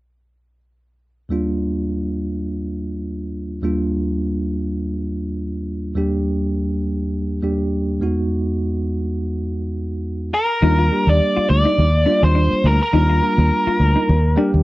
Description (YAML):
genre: jazz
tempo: 103 BPM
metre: 4/4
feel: swing 56% on 16ths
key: Eb major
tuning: A4 = 440 Hz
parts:
  - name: bell-like tine electric piano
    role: accompaniment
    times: 1.3-14.6 s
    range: Eb2 to G5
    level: -21 LUFS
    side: equal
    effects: fast stereo tremolo
  - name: biting lead guitar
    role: melody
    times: 10.3-14.5 s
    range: Bb4 to D5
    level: -19 LUFS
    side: equal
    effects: overdrive, slapback echo
  - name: clean electric guitar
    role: stabs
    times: 10.6-14.6 s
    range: D4 to F4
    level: -24 LUFS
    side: left 2 dB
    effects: ensemble chorus
  - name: fingered electric bass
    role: bass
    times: 10.6-14.6 s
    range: D2 to Eb2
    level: -15 LUFS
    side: equal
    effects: none
room: light reverb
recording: dry, close 1970s-style studio recording, lossy compression artefacts, faint mains hum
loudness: -17 LUFS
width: side -18 dB against mid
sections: 1.3-10.6 A section; 10.6-14.6 B section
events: tine electric piano fill 14.1-14.6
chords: 1.3 Ebmaj9; 8.0 Emaj9; 10.6 Ebmaj9